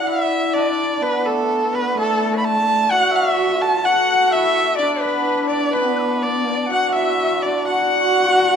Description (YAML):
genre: chinese traditional, Chinese chamber ensemble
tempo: 63 BPM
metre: 2/4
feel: straight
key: D gong mode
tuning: A4 = 438 Hz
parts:
  - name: rich erhu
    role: melody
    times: 0.0-8.6 s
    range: A4 to B5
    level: -19 LUFS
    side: right 1 dB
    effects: none
  - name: bright dizi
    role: second line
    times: 0.0-8.6 s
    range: A4 to F#6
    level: -23 LUFS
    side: left 5 dB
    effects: none
  - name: hammered dulcimer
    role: second line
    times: 0.0-8.6 s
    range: A3 to A4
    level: -23 LUFS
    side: right 5 dB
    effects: none
  - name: warm horsehead fiddle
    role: second line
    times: 0.0-8.6 s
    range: A3 to F#4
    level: -23 LUFS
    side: left 4 dB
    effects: none
room: moderate concert hall reverb, RT60 2.0 s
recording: minimal, uncompressed stereo recording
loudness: -16 LUFS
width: side -7 dB against mid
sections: 0.1-8.6 A section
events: none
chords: none